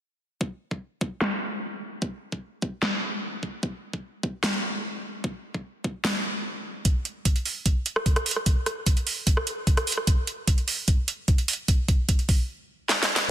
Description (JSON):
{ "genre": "heavy wobble dubstep", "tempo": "149 BPM", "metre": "4/4", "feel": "half-time", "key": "none", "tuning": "none", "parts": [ { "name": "electronic kick drum", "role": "drums", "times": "0.4-12.4 s", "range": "none", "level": "-23 LUFS", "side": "equal", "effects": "high-pass filter on kick" }, { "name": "dubstep drum kit", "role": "drums", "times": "1.2-13.2 s", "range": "hi-hat, rim click, snare drum", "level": "-26 LUFS", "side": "right 1 dB", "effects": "high-pass filter on snare, low-pass filter on snare, high-pass filter on hats, low-pass filter on hats, high-pass filter on cymbals, low-pass filter on cymbals" } ], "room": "light reverb, digital ambience", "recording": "dense, heavily limited modern master", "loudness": "-24 LUFS", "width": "side -11 dB against mid", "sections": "0.4-6.9 A section; 6.9-13.3 B section", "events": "filter sweep on drum 0.4-6.9; kick drops out 6.0-6.9; build-up 6.9-13.3; drum fill 10.1-12.5, 12.9-13.3; stop 12.5-13.3", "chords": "none" }